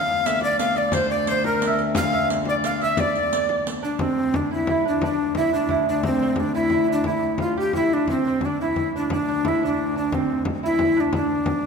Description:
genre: medieval dance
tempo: 118 BPM (dotted quarters)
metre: 6/8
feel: straight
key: D minor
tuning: A4 = 439 Hz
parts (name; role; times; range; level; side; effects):
- breathy tenor recorder; melody; 0.0-11.7 s; C4 to F5; -22 LUFS; equal; none
- clear shawm; second line; 0.0-3.7 s; Bb4 to F5; -28 LUFS; left 4 dB; none
- lute; second line; 0.0-11.7 s; C4 to F5; -27 LUFS; right 5 dB; none
- warm viola da gamba; drone; 0.0-11.7 s; D2; -30 LUFS; left 3 dB; none
- riq; percussion; 0.3-3.8 s; none; -31 LUFS; right 2 dB; none
- frame drum; percussion; 0.4-11.7 s; none; -29 LUFS; left 3 dB; none
room: wet scoring stage reverb, RT60 1.8 s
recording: minimal, uncompressed stereo recording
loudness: -20 LUFS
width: side -5 dB against mid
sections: 0.0-4.0 A section; 4.0-11.7 B section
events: none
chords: none

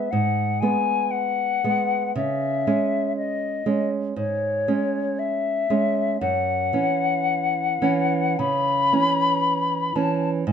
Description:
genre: romantic duo for flute and classical guitar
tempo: 50-61 BPM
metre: 4/4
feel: rubato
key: unclear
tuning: A4 = 440 Hz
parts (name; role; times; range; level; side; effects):
- hollow concert flute; melody; 0.0-10.5 s; C#5 to B5; -23 LUFS; left 6 dB; none
- nylon-string guitar; accompaniment; 0.0-10.5 s; F#2 to C#4; -24 LUFS; right 4 dB; none
room: moderate studio reverb, RT60 0.6 s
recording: dark, warm production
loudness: -20 LUFS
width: side -8 dB against mid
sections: 0.0-10.5 A section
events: none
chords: 0.0 E/G# (rootless); 2.2 C#m; 6.2 F#5

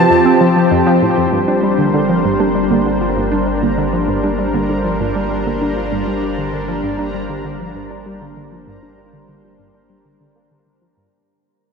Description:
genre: ambient, sequencer-driven space music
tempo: 98 BPM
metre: 4/4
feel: straight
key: G minor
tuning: A4 = 440 Hz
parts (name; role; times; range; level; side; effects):
- bright reedy concert flute; melody; 0.0-0.7 s; A5; -20 LUFS; left 1 dB; ping-pong delay
- lush unison pad; sustained chords; 0.0-11.1 s; F3 to C5; -16 LUFS; equal; chorus
- analog pluck; riff; 0.0-11.1 s; F2 to D4; -20 LUFS; equal; chorus, ping-pong delay
- warbly dusty pluck; arpeggios; 1.3-6.1 s; F3 to D4; -23 LUFS; moving between left 1 dB and right 6 dB; chorus, auto-pan, ping-pong delay
- warm sub bass; bass; 1.3-11.1 s; G1; -28 LUFS; equal; none
- bubbling stepped-filter texture; texture; 2.2-11.1 s; Bb3 to Bb5; -30 LUFS; equal; chorus, built-in reverb
room: wet cathedral reverb, RT60 6.0 s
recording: in a vast, echoing space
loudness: -14 LUFS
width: side -5 dB against mid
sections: 0.0-1.3 A section; 1.3-11.1 B section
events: fade-out on sub bass 1.3-11.1; fade-out 1.3-11.1; filter sweep on synth arpeggio sound 1.3-11.1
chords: 0.0 F; 1.3 Gm7

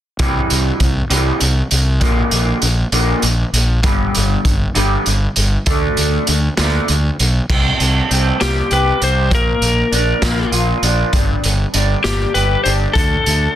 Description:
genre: quiet-loud alternative rock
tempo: 66 BPM (dotted quarters)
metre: 6/8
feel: straight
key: unclear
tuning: A4 = 441 Hz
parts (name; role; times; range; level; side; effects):
- electric guitar through a small old amp; arpeggios; 0.2-13.6 s; G2 to G4; -20 LUFS; equal; lush chorus, slapback echo
- fuzz fingered electric bass; bass; 0.2-13.5 s; G1 to D2; -17 LUFS; equal; overdrive
- raw garage drum kit; drums; 0.2-13.4 s; crash cymbal, hi-hat, kick drum, snare drum; -18 LUFS; right 1 dB; none
- lightly driven lead guitar; melody; 8.4-13.6 s; G4 to C5; -18 LUFS; left 4 dB; slapback echo
room: studio reverb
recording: dense, heavily limited modern master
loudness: -13 LUFS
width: side -12 dB against mid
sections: 0.2-7.5 A section; 7.5-13.6 B section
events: none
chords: 0.2 C; 2.0 Bb; 3.8 G5; 5.7 D5; 7.5 C5; 9.3 Bb; 11.1 G5; 12.9 D5

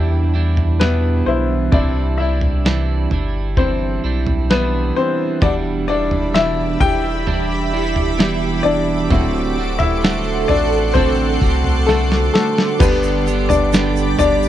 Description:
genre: pop ballad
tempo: 65 BPM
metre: 4/4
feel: straight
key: G major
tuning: A4 = 440 Hz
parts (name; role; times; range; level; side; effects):
- bright upright piano; accompaniment; 0.0-14.5 s; F#3 to G5; -20 LUFS; left 5 dB; none
- twelve-string electric guitar; arpeggios; 0.0-14.5 s; E2 to G4; -22 LUFS; right 7 dB; warbly pitch drift
- warm sub bass; bass; 0.0-14.5 s; D1 to E2; -20 LUFS; equal; none
- dusty soul sampler-style drum kit; drums; 0.6-14.4 s; crash cymbal, kick drum, snare drum, toms; -19 LUFS; equal; none
- shimmering ambient pad; sustained chords; 6.1-14.5 s; G3 to D6; -23 LUFS; right 2 dB; chorus, built-in reverb
- egg shaker; percussion; 12.8-14.5 s; none; -35 LUFS; right 13 dB; none
room: little or no reverb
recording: dry, close 1970s-style studio recording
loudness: -15 LUFS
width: side -12 dB against mid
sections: 0.0-12.8 A section; 12.8-14.5 B section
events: upright piano solo 0.0-12.8, 12.8-14.5; drum fill 11.9-12.8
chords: 0.0 Em7; 1.7 Cadd9; 5.4 Em7; 9.1 D7; 12.8 G

